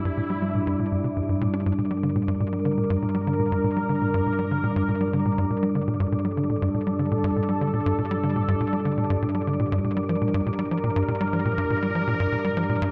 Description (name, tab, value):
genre	ambient, sequencer-driven space music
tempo	121 BPM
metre	4/4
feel	straight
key	G dorian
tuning	A4 = 440 Hz
part	sweeping resonant pad	sustained chords	0.0-12.9 s	G2 to Bb4	-27 LUFS	equal	chorus
part	tight sequencer bass	riff	0.0-12.9 s	G2 to D4	-28 LUFS	equal	analog chorus, tape echo
part	wind-like tuned noise texture	texture	0.0-12.9 s	D5	-40 LUFS	equal	built-in reverb
room	moderate plate reverb, RT60 3.6 s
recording	nothing above 10.5 kHz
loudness	-25 LUFS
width	mono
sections	0.0-12.9 A section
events	fade-in on synth texture 0.0-12.9; filter sweep on analog synth bass 0.0-12.9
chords	0.0 Gm